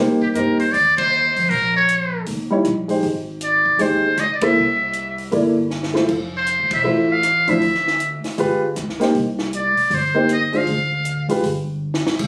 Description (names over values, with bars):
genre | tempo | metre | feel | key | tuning
jazz, small-group swing and bop | 157 BPM | 4/4 | swing 64% on 8ths | unclear | A4 = 443 Hz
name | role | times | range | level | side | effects
warm grand piano | accompaniment | 0.0-11.4 s | F3 to D5 | -21 LUFS | equal | none
upright bass | bass | 0.0-12.3 s | E1 to A2 | -29 LUFS | equal | none
trumpet with metal mute | melody | 0.2-11.3 s | G4 to F5 | -20 LUFS | equal | none
compact cocktail drum kit | drums | 0.2-12.3 s | crash cymbal, hi-hat, kick drum, ride cymbal, rim click, snare drum | -31 LUFS | equal | none
room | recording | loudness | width
moderate studio reverb, RT60 0.8 s | recorded on a phone in the room, club reverb | -19 LUFS | mono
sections
0.0-12.2 A section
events
band accent 0.9, 4.4, 6.7; drum fill 5.7-6.1, 11.8-12.2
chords
0.0 Cm7; 1.5 Bbm; 2.3 Eb7b9; 3.0 Abmaj7; 4.6 C13; 6.1 Fmaj7; 7.6 Dsus2; 8.4 G7b9; 9.1 C5; 10.7 Ddim; 11.4 N.C.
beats
0.35 0.73 1.12 | 1.50 1.88 2.27 2.65 | 3.03 3.41 3.79 4.18 | 4.56 4.94 5.33 5.71 | 6.09 6.47 6.85 7.24 | 7.62 8.00 8.38 8.76 | 9.14 9.53 9.91 10.29 | 10.67 11.05 11.43 11.81 | 12.19